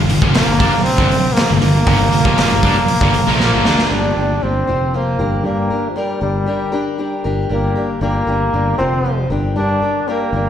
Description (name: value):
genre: quiet-loud alternative rock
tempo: 117 BPM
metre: 4/4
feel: straight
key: G minor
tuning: A4 = 440 Hz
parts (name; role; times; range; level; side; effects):
- dark studio string section; sustained chords; 0.0-3.9 s; D4 to F5; -32 LUFS; left 1 dB; none
- distorted electric guitar; riff; 0.0-3.9 s; F2 to D4; -22 LUFS; left 10 dB; overdrive, slapback echo
- distorted electric guitar; riff; 0.0-3.9 s; F2 to D4; -22 LUFS; left 1 dB; distortion, slapback echo
- thick fuzz guitar; riff; 0.0-3.9 s; F2 to D4; -20 LUFS; right 8 dB; distortion, slapback echo
- fingered electric bass; bass; 0.0-10.5 s; F1 to G2; -19 LUFS; equal; none
- raw garage drum kit; drums; 0.1-3.9 s; hi-hat, kick drum, snare drum; -16 LUFS; equal; none
- bright trombone; melody; 0.3-10.5 s; F3 to D4; -19 LUFS; equal; slapback echo
- picked acoustic archtop guitar; arpeggios; 3.9-10.5 s; G2 to C5; -22 LUFS; left 3 dB; slapback echo
room: little or no reverb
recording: live gig heard through the venue's PA, recital hall reverb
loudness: -13 LUFS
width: side -9 dB against mid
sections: 0.0-3.9 A section; 3.9-10.5 B section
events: drum fill 3.4-3.9; half time 3.9-10.5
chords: 0.0 Gm; 4.7 F5; 5.2 Gm; 8.8 F5; 9.3 Gm